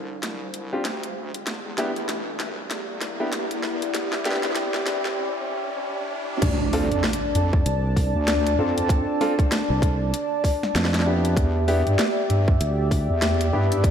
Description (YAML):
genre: glitch hop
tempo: 97 BPM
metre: 4/4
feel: swing 60% on 16ths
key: D dorian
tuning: A4 = 439 Hz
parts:
  - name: warm analog pad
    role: sustained chords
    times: 0.0-13.9 s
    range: D4 to A5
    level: -27 LUFS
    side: left 1 dB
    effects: chorus, vintage 12-bit sampler grit, sidechain pumping
  - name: wobble bass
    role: bass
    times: 0.0-13.9 s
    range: A1 to G2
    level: -26 LUFS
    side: equal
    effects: chorus, high-pass filter
  - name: riser and impact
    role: sound effects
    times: 0.0-8.9 s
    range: none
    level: -32 LUFS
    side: right 1 dB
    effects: none
  - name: drum and bass drum kit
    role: drums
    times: 0.2-13.9 s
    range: crash cymbal, hi-hat, snare drum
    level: -29 LUFS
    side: equal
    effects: overdrive, high-pass filter on hats, small room ambience, high-pass filter on snare, high-pass filter on cymbals
  - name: warm concert grand piano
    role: stabs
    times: 0.7-13.9 s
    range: B3 to A4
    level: -29 LUFS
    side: equal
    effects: sidechain pumping, low-pass filter, ping-pong delay
  - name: electronic kick drum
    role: drums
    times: 6.4-13.9 s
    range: none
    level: -20 LUFS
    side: equal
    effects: overdrive, small room ambience
  - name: fingered electric bass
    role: bass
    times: 7.7-13.1 s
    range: C2 to F2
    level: -23 LUFS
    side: equal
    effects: tube saturation
room: moderate lush hall reverb, RT60 2.7 s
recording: dreamy mix soaked in reverb, high-pass filter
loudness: -21 LUFS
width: side -8 dB against mid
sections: 0.0-6.4 A section; 6.4-13.9 B section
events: build-up 0.0-6.4; drum fill 0.0-5.2; riser 0.0-6.4; filter sweep on grand piano 0.0-6.4; filter sweep on analog synth pad 0.0-6.4; break 5.2-6.4; drop 6.4-13.9; impact 6.4-8.9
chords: 0.0 Dm7; 1.5 Em7; 6.4 Dm7; 11.4 Em7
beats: 0.23 0.85 | 1.47 2.09 2.71 3.33 | 3.94 4.56 5.18 5.80 | 6.42 7.04 7.66 8.28 | 8.89 9.51 10.13 10.75 | 11.37 11.99 12.61 13.22 | 13.84